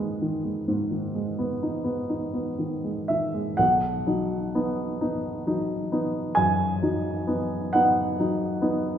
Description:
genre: classical, romantic nocturne for solo piano.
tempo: 39-47 BPM (dotted quarters).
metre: 12/8.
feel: rubato.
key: G# minor, B major from 3.6 s.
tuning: A4 = 440 Hz.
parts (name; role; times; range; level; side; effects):
warm baby grand piano; solo; 0.0-9.0 s; B1 to G#5; -23 LUFS; equal; none.
room: wet recital hall reverb, RT60 1.4 s.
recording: recorded in a church or concert hall.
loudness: -23 LUFS.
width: side -9 dB against mid.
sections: 0.0-3.6 A section; 3.6-9.0 B section.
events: none.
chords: 0.0 G#m; 3.6 B.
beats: 0.68 2.10 | 3.59 5.01 6.38 7.74.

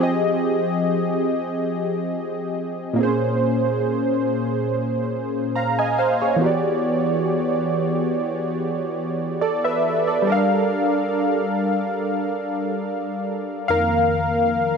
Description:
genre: R&B.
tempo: 70 BPM.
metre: 4/4.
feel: swing 54% on 16ths.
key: unclear.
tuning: A4 = 440 Hz.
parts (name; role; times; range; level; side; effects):
warm analog keys; solo; 0.0-14.8 s; F2 to Bb5; -19 LUFS; equal; chorus, tape echo.
room: light reverb.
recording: none.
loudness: -19 LUFS.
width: side -6 dB against mid.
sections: 0.0-13.7 A section; 13.7-14.8 B section.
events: synth keys solo 13.7-14.8.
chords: 0.0 Fm7; 3.0 Bbm7; 6.4 Em7; 10.3 Gm7; 13.7 F7sus4.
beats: 0.83 1.69 2.55 | 3.41 4.26 5.12 5.98 | 6.83 7.69 8.55 9.41 | 10.26 11.12 11.98 12.84 | 13.69 14.55.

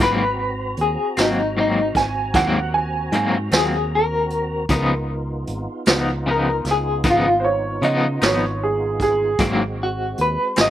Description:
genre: slow blues.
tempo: 51 BPM (dotted quarters).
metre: 12/8.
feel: straight.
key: Ab mixolydian.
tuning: A4 = 440 Hz.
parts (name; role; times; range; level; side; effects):
electric guitar through a small old amp; melody; 0.0-10.7 s; Eb4 to Eb5; -21 LUFS; left 2 dB; tremolo, slapback echo.
electric guitar at the edge of break-up; accompaniment; 0.0-10.7 s; Ab2 to Eb4; -21 LUFS; left 2 dB; tremolo, slapback echo.
tonewheel organ; sustained chords; 0.0-10.7 s; Ab3 to Bb5; -31 LUFS; right 1 dB; slow rotary speaker, overdrive, chorus vibrato.
fingered electric bass; bass; 0.0-10.7 s; Ab1 to Db3; -26 LUFS; equal; none.
vintage brush drum kit; drums; 0.8-10.7 s; hi-hat, kick drum, snare drum; -20 LUFS; right 1 dB; none.
clear upright piano; second line; 2.0-9.4 s; Ab4 to Ab5; -21 LUFS; right 4 dB; slapback echo.
room: little or no reverb.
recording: none.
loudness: -18 LUFS.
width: side -12 dB against mid.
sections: 0.0-10.7 A section.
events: none.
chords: 0.0 Ab9; 4.7 Db9; 9.4 Ab9.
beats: | 0.00 1.17 2.35 3.52 | 4.69 5.87 7.04 8.21 | 9.39 10.56.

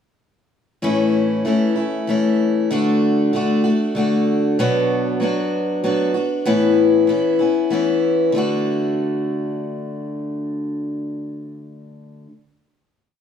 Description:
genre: rock.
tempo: 96 BPM.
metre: 3/4.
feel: straight.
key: D major.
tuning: A4 = 440 Hz.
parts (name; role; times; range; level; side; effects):
picked steel-string acoustic guitar; solo; 0.8-12.3 s; A2 to F#4; -17 LUFS; left 1 dB; none.
room: wet large studio reverb, RT60 1.0 s.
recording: band playing live in one room.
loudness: -17 LUFS.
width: side -8 dB against mid.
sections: 0.8-8.3 verse; 8.3-12.1 final chord.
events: none.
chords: 0.8 A; 2.7 D; 4.6 Bm; 6.5 Aadd9; 8.3 D.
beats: | 0.83 1.45 2.08 | 2.71 3.33 3.96 | 4.59 5.21 5.84 | 6.47 7.09 7.72 | 8.34 8.97 9.59 | 10.21 10.84 11.46.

